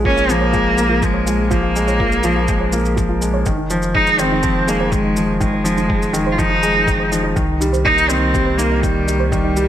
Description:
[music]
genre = piano and strings electronica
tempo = 123 BPM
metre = 4/4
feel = straight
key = F minor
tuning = A4 = 440 Hz
[part]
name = soft round pluck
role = arpeggios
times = 0.0-9.5 s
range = Eb4 to Db5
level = -27 LUFS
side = right 2 dB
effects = chorus, vintage 12-bit sampler grit, sidechain pumping, ping-pong delay
[part]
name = felt-muted upright piano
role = riff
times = 0.0-9.7 s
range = Eb3 to Bb3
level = -19 LUFS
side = equal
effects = ping-pong delay
[part]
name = round analog bass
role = bass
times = 0.0-9.7 s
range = F1 to C2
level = -23 LUFS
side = equal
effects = sidechain pumping
[part]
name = rich cello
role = melody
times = 0.1-9.7 s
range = G3 to F4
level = -18 LUFS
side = equal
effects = ping-pong delay
[part]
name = electronic kick drum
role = drums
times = 0.1-9.4 s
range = none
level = -22 LUFS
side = equal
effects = small room ambience
[part]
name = shaker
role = drums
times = 0.2-9.7 s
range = none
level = -30 LUFS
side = right 1 dB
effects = small room ambience
[sound]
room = light reverb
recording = none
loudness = -14 LUFS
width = side -11 dB against mid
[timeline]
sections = 0.0-9.7 A section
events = none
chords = 0.0 Bbm7; 3.5 Fm7; 7.4 Cm7

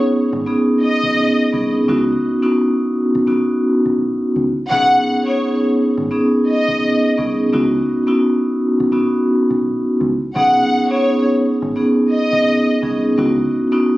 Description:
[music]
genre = hip hop, boom-bap hip-hop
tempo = 85 BPM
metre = 4/4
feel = swing 58% on 16ths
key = B major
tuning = A4 = 440 Hz
[part]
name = vibraphone with medium mallets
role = accompaniment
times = 0.0-14.0 s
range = B3 to G#4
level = -15 LUFS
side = equal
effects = high-pass filter, low-pass filter
[part]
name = deep dub fingered electric bass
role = bass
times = 0.3-13.5 s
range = G#1 to C#2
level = -27 LUFS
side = right 1 dB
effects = none
[part]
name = warm symphonic violin section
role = melody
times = 0.8-12.6 s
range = C#5 to F#5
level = -18 LUFS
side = equal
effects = high-pass filter, low-pass filter, ping-pong delay
[sound]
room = moderate studio ambience, RT60 0.5 s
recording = recorded on a phone in the room, studio reverb, compression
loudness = -14 LUFS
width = side -17 dB against mid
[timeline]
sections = 0.0-14.0 A section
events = none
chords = 0.0 B69; 1.9 C#m11; 4.7 B69; 7.5 C#m11; 10.4 B69; 13.2 C#m11

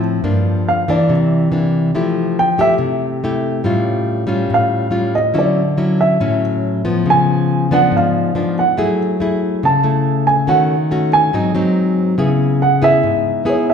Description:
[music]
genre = bossa nova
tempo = 141 BPM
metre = 4/4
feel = straight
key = unclear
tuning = A4 = 440 Hz
[part]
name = nylon-string guitar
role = accompaniment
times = 0.0-13.7 s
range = G2 to G#4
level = -15 LUFS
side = left 2 dB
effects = none
[part]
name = dark baby grand piano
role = melody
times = 0.7-13.7 s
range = C#5 to A5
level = -16 LUFS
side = right 3 dB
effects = none
[sound]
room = wet scoring stage reverb, RT60 1.6 s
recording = recorded in a church or concert hall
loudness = -13 LUFS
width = side -7 dB against mid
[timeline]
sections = 0.0-13.7 A section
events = grand piano solo 0.0-13.7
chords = 0.2 Gm7; 1.1 C9; 1.9 Fmaj9; 3.6 Aaug7; 5.4 Dmaj9; 7.1 C#7b9; 8.8 F#m9; 10.5 D#m7b5; 11.3 G#7; 12.2 C#m7

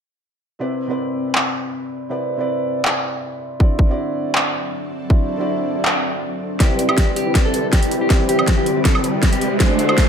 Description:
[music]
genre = future bass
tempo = 160 BPM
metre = 4/4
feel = half-time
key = C lydian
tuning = A4 = 440 Hz
[part]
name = felt-muted upright piano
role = accompaniment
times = 0.6-10.1 s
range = C3 to D5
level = -23 LUFS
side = right 1 dB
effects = lush chorus, sidechain pumping, tape echo
[part]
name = big-room dance drum kit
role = drums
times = 1.4-10.1 s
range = handclaps, hi-hat, snare drum, woodblock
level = -20 LUFS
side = equal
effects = overdrive, high-pass filter on snare, high-pass filter on hats, high-pass filter on perc
[part]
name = ethereal airy pad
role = sustained chords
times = 4.1-10.1 s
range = D3 to B4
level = -29 LUFS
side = left 1 dB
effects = ensemble chorus, built-in reverb, sidechain pumping
[part]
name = electronic kick drum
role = drums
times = 3.6-10.1 s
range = none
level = -16 LUFS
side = equal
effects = none
[part]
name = mellow electric guitar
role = melody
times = 6.6-10.1 s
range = G4 to C5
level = -22 LUFS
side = left 1 dB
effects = wide subtle chorus, sidechain pumping, ping-pong delay
[part]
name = supersaw chords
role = riff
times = 6.6-10.0 s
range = C4 to G5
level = -24 LUFS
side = left 1 dB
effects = phaser, sidechain pumping, low-pass filter
[part]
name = fat analog bass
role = bass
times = 6.6-10.1 s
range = C2 to D2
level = -28 LUFS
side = left 2 dB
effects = none
[part]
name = riser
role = sound effects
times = 8.0-10.1 s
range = none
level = -25 LUFS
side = right 2 dB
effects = none
[sound]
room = moderate plate reverb, RT60 1.3 s, digital ambience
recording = dreamy mix soaked in reverb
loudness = -16 LUFS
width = side -7 dB against mid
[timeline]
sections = 0.6-6.6 A section; 6.6-10.1 B section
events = build-up 6.6-10.1; drum fill 6.6-10.1; filter sweep on supersaw synth 6.6-10.1; riser 8.0-10.1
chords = 0.6 Cmaj9; 3.6 D7; 6.6 Cmaj9

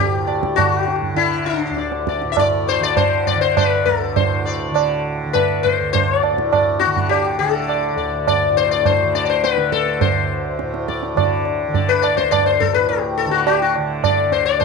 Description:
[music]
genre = indian classical, Hindustani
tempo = 103 BPM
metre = 5/4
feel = straight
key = D raga khamaj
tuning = A4 = 441 Hz
[part]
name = sitar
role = melody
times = 0.0-14.6 s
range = D4 to E5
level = -18 LUFS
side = left 10 dB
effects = none
[part]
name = tanpura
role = drone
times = 0.0-14.6 s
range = D2 to D3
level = -24 LUFS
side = right 3 dB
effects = none
[part]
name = tabla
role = percussion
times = 0.3-14.6 s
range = none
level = -20 LUFS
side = right 10 dB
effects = none
[sound]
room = light reverb, small room reverb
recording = 1960s-style stereo with parts hard left and right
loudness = -16 LUFS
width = side -4 dB against mid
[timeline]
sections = 0.0-4.2 A section; 4.2-14.6 B section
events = speeding up 0.0-14.6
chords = none

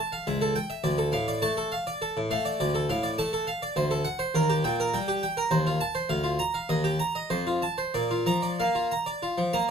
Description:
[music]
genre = classical, baroque-style suite movement for harpsichord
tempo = 101 BPM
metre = 3/4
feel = uneven beats, rubato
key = Bb major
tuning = A4 = 440 Hz
[part]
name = harpsichord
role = solo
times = 0.0-9.7 s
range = C#2 to Bb5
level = -25 LUFS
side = equal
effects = none
[sound]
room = moderate studio reverb, RT60 0.5 s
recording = close, detailed microphones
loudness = -25 LUFS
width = side -7 dB against mid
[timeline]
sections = 0.0-9.7 A section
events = none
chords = 0.3 A7/C#; 0.8 Dm; 3.8 D7; 4.3 Eb; 5.5 F7/Eb; 6.1 Bb/D; 6.7 Eb; 7.3 F; 7.9 Bb

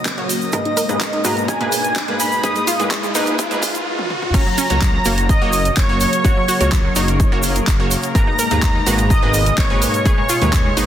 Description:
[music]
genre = progressive house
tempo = 126 BPM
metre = 4/4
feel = straight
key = F# major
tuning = A4 = 437 Hz
[part]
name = lush unison pad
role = sustained chords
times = 0.0-10.9 s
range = B2 to A#4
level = -27 LUFS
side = left 2 dB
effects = chorus, phaser, sidechain pumping
[part]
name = analog pluck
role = arpeggios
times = 0.0-10.9 s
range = F#3 to A#4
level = -24 LUFS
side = equal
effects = chorus, sidechain pumping, tape echo
[part]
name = riser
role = sound effects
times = 0.0-4.3 s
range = none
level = -27 LUFS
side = right 1 dB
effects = none
[part]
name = drifting glass-harmonics texture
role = texture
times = 0.0-3.9 s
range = D#5 to D#6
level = -34 LUFS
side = equal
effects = none
[part]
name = dark detuned saw bass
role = bass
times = 0.1-10.9 s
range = F#1 to D#2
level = -22 LUFS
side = equal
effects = sidechain pumping, high-pass filter
[part]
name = electronic kick drum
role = drums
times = 0.1-10.6 s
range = none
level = -17 LUFS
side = equal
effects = high-pass filter on kick, high-pass filter on room
[part]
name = pop drum kit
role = drums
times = 0.1-10.9 s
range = crash cymbal, handclaps, hi-hat, toms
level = -25 LUFS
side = equal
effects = overdrive
[part]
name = egg shaker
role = percussion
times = 0.1-10.9 s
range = none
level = -26 LUFS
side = right 4 dB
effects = none
[part]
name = wide unison pluck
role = stabs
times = 0.2-10.9 s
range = G#2 to C#5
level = -24 LUFS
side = right 1 dB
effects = sidechain pumping, tape echo
[part]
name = soft supersaw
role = melody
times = 0.5-10.9 s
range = C#5 to D#6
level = -22 LUFS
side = equal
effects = sidechain pumping, low-pass filter, tape echo
[part]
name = soft supersaw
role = second line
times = 4.3-10.9 s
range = C#6 to A#6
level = -28 LUFS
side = right 1 dB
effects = sidechain pumping, tape echo
[sound]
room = light reverb, digital ambience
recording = dense, heavily limited modern master, high-pass filter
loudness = -14 LUFS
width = side -10 dB against mid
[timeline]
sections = 0.0-4.3 A section; 4.3-10.9 B section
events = build-up 0.0-4.3; riser 0.0-4.3; filter sweep on synth pluck 0.0-4.3; filter sweep on analog synth pad 0.0-4.3; filter sweep on supersaw synth 0.0-4.3; drum fill 4.0-4.3; drop 4.3-10.9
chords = 0.0 F#; 0.5 G#madd9; 4.3 F#; 8.2 G#madd9

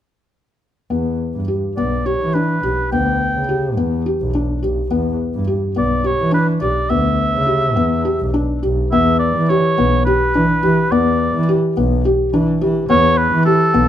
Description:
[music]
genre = contemporary instrumental, contemporary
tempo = 210 BPM (eighths)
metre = 7/8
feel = straight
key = E dorian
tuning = A4 = 438 Hz
[part]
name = felt-muted upright piano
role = arpeggios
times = 0.9-13.9 s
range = B3 to G4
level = -18 LUFS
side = left 3 dB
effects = none
[part]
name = warm double bass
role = bass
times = 0.9-13.9 s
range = B1 to E3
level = -19 LUFS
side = right 1 dB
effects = none
[part]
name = warm oboe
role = melody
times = 1.8-13.9 s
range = A4 to G5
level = -18 LUFS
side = right 2 dB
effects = none
[sound]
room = little or no reverb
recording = close, detailed microphones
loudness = -14 LUFS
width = side -10 dB against mid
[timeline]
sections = 0.9-8.9 A section; 8.9-13.9 B section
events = none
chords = 0.9 Em7; 8.9 Em

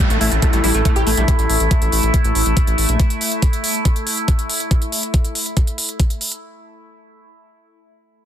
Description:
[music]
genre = psychedelic trance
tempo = 140 BPM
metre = 4/4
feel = straight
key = unclear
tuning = A4 = 440 Hz
[part]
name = supersaw stab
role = melody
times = 0.0-1.2 s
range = A3 to G4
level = -24 LUFS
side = right 1 dB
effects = phaser, vintage 12-bit sampler grit, sidechain pumping, tape echo
[part]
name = overtone-sweeping drone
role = sustained chords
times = 0.1-4.8 s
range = A3 to E4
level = -23 LUFS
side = left 1 dB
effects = chorus, built-in reverb, phaser, sidechain pumping
[part]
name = overdriven acid bass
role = riff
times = 0.0-1.2 s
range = G3 to A3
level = -26 LUFS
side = equal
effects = distortion, auto-pan, sidechain pumping, dub echo
[part]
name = electronic hi-hat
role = drums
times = 0.0-6.4 s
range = none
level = -23 LUFS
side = right 1 dB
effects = none
[part]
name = electronic kick drum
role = drums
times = 0.0-6.1 s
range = none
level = -16 LUFS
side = equal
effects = none
[part]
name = downlifter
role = sound effects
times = 0.0-3.0 s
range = none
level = -28 LUFS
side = right 1 dB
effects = none
[part]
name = warbly tape-like pad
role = texture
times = 0.1-3.0 s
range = E4 to A5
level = -29 LUFS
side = equal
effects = none
[part]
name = round analog bass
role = bass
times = 0.1-3.0 s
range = A1 to Bb1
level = -18 LUFS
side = equal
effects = none
[sound]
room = light reverb, digital ambience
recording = dense, heavily limited modern master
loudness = -15 LUFS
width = side -10 dB against mid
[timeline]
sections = 0.0-6.4 A section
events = none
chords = 0.0 A5

